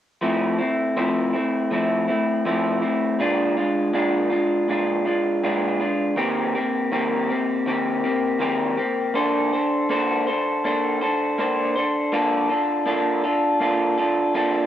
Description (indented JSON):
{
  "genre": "indie pop",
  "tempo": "81 BPM",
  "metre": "4/4",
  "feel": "swing 55% on 16ths",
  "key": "unclear",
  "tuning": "A4 = 439 Hz",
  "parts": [
    { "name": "electric guitar through a small old amp", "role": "solo", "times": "0.2-14.7 s", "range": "Bb2 to C5", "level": "-20 LUFS", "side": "equal", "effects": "lush chorus, warbly pitch drift" }
  ],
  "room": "moderate spring reverb, RT60 1.3 s, digital ambience",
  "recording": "worn, warbling old tape, cassette tape, warbly pitch drift",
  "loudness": "-20 LUFS",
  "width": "side -11 dB against mid",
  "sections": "0.2-12.1 A section; 12.1-14.7 B section",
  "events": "none",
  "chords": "0.2 Fmaj7; 3.2 Bb7; 6.2 Eb6; 9.1 Bbmaj9; 12.1 Bbmaj7"
}